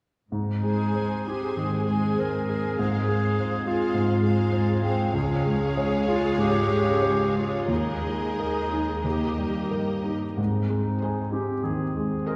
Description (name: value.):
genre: classical, romantic movement for piano and orchestra.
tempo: 86-106 BPM.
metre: 4/4.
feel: rubato.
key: Ab major.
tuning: A4 = 441 Hz.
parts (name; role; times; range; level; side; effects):
warm grand piano; melody; 0.3-12.4 s; Db2 to Db5; -29 LUFS; equal; none.
warm clarinet; second line; 0.3-12.4 s; C4 to Bb4; -32 LUFS; equal; none.
dark French horn section; sustained chords; 0.3-12.4 s; Bb3 to Ab4; -37 LUFS; equal; none.
warm studio cello section; bass; 0.3-12.1 s; Db2 to Ab2; -33 LUFS; equal; none.
rich studio violin section; second line; 0.6-12.4 s; Bb4 to Ab5; -38 LUFS; equal; none.
rich studio viola section; accompaniment; 0.6-12.4 s; Ab3 to Ab4; -34 LUFS; equal; none.
room: wet concert hall reverb, RT60 2.1 s.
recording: heard from further back in the room.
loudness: -25 LUFS.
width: mono.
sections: 0.3-12.4 A section.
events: none.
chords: 0.3 Ab; 2.8 Fm/Ab; 5.2 Db; 7.7 Ebsus4; 9.0 Eb; 10.4 Ab.